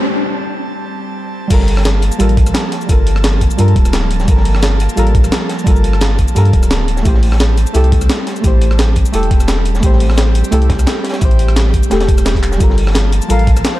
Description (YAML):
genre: liquid drum and bass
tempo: 173 BPM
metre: 4/4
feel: swing 54% on 16ths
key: G dorian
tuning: A4 = 440 Hz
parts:
  - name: deep mellow chord stab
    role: accompaniment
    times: 0.0-13.8 s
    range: G3 to C5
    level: -20 LUFS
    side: equal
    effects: chorus, ping-pong delay
  - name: airy breathy pad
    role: sustained chords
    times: 0.0-13.8 s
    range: F3 to A5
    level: -24 LUFS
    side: right 1 dB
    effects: chorus, sidechain pumping
  - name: warm sub bass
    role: bass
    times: 1.5-13.6 s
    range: D1 to G2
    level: -13 LUFS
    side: equal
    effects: none
  - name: breakbeat sampler-style drum kit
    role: drums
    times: 1.5-13.7 s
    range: crash cymbal, handclaps, hi-hat, rim click, shaker, snare drum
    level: -20 LUFS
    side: equal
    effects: high-pass filter on hats, high-pass filter on snare, high-pass filter on cymbals, high-pass filter on perc, high-pass filter on room
  - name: crunchy breakbeat drum kit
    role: drums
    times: 1.5-13.7 s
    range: hi-hat, snare drum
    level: -26 LUFS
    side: equal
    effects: high-pass filter on hats, high-pass filter on snare, high-pass filter on room
  - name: electronic kick drum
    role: drums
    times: 1.5-13.5 s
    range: none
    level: -13 LUFS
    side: equal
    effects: none
  - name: breathy mellow silver concert flute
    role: melody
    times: 13.3-13.8 s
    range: C5 to F5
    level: -21 LUFS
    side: left 1 dB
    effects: ping-pong delay
room: light reverb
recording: dark, warm production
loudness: -10 LUFS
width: side -16 dB against mid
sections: 0.0-1.5 A section; 1.5-13.8 B section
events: build-up 0.0-1.5; filter sweep on synth stab 0.0-1.5; break 0.1-1.5; drop 1.5-13.8; drum fill 12.4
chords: 0.0 Am7; 1.5 Gm9; 7.1 Am7; 12.6 Gm9